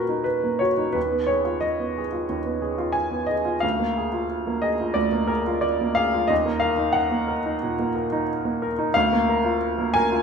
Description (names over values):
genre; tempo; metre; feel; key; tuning
classical, romantic character piece for solo piano; 90 BPM; 4/4; rubato; Eb minor; A4 = 440 Hz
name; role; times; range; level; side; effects
clear baby grand piano; solo; 0.0-10.2 s; D2 to Ab5; -21 LUFS; equal; none
room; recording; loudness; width
wet stone room reverb, RT60 1.3 s; none; -21 LUFS; side -6 dB against mid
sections
0.0-10.2 A section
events
none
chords
0.0 Ebm; 1.0 Fm7b5/Eb; 3.6 Bb7/D; 6.3 Ebm; 8.9 Bb/D